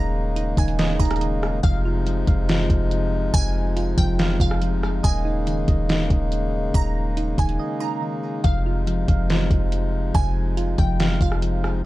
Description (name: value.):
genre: hip hop, atmospheric cloud-rap.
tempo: 141 BPM.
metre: 4/4.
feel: half-time.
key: F minor.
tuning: A4 = 440 Hz.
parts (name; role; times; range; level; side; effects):
glassy wavetable pluck; melody; 0.0-11.8 s; F5 to Bb5; -31 LUFS; right 3 dB; chorus, phaser, tape echo.
pedal harmonium; sustained chords; 0.0-11.8 s; C3 to Eb4; -27 LUFS; left 2 dB; none.
soft electric-piano-like synth keys; arpeggios; 0.0-11.8 s; Eb3 to F5; -30 LUFS; right 3 dB; chorus, tape echo.
clean 808-style bass; bass; 0.0-11.8 s; Eb1 to F1; -23 LUFS; equal; none.
smooth R&B drum kit; drums; 0.4-11.7 s; hi-hat, kick drum, rim click, snare drum; -21 LUFS; equal; none.
room: little or no reverb.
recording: dark, warm production.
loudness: -19 LUFS.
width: side -17 dB against mid.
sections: 0.0-1.6 A section; 1.6-11.9 A section.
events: break 7.6-8.4.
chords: 0.0 Eb7sus4; 1.6 Fm7; 5.0 Eb7sus4; 8.4 Fm7.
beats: 0.36 0.79 1.21 | 1.64 2.06 2.49 2.91 | 3.34 3.76 4.19 4.62 | 5.04 5.47 5.89 6.32 | 6.74 7.17 7.59 8.02 | 8.45 8.87 9.30 9.72 | 10.15 10.57 11.00 11.42 | 11.85.